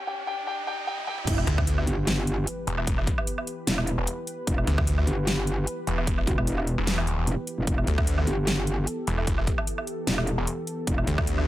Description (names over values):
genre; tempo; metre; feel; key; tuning
heavy wobble dubstep; 150 BPM; 4/4; swing 54% on 16ths, half-time; E minor; A4 = 441 Hz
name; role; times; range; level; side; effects
dark baby grand piano; melody; 0.0-1.3 s; G4 to G5; -32 LUFS; left 1 dB; dub echo
riser and sub drop; sound effects; 0.0-2.9 s; none; -34 LUFS; right 1 dB; none
dubstep drum kit; drums; 1.0-11.5 s; crash cymbal, hi-hat, snare drum, toms, woodblock; -30 LUFS; right 1 dB; none
supersaw pad; sustained chords; 1.3-11.5 s; E3 to B4; -35 LUFS; equal; sidechain pumping, low-pass filter
metallic wobble bass; bass; 1.3-11.1 s; E1 to G1; -26 LUFS; equal; chorus, overdrive
electronic kick drum; drums; 1.3-11.3 s; none; -28 LUFS; equal; none
snarling distorted saw bass; bass; 1.5-11.5 s; E1 to D2; -25 LUFS; equal; distortion, overdrive
room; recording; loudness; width
digital ambience; high-pass filter; -24 LUFS; side -14 dB against mid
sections
0.0-1.3 A section; 1.3-11.5 B section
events
break 0.0-1.3; build-up 0.0-1.3; riser 0.0-1.3; filter sweep 0.0-1.3; drum fill 1.0; drop 1.3-11.5; impact 1.3-2.9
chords
0.0 N.C.; 1.3 Em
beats
0.07 0.47 0.87 | 1.27 1.67 2.07 2.47 | 2.87 3.27 3.67 4.07 | 4.47 4.87 5.27 5.67 | 6.07 6.47 6.87 7.27 | 7.67 8.07 8.47 8.87 | 9.27 9.67 10.07 10.47 | 10.87 11.27